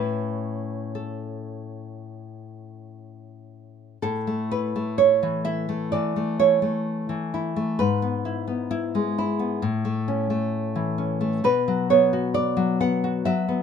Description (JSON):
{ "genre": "romantic piece for solo classical guitar", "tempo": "57-68 BPM", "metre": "4/4", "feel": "rubato", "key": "A major", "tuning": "A4 = 440 Hz", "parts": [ { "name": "nylon-string guitar", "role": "solo", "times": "0.0-13.6 s", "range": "G#2 to F#5", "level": "-22 LUFS", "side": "equal", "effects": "none" } ], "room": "light reverb", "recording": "minimal, uncompressed stereo recording", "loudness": "-22 LUFS", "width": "side -7 dB against mid", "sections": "0.0-4.0 A section; 4.0-13.6 B section", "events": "none", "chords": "0.0 A; 7.8 E/G#; 9.6 A; 11.4 Bm" }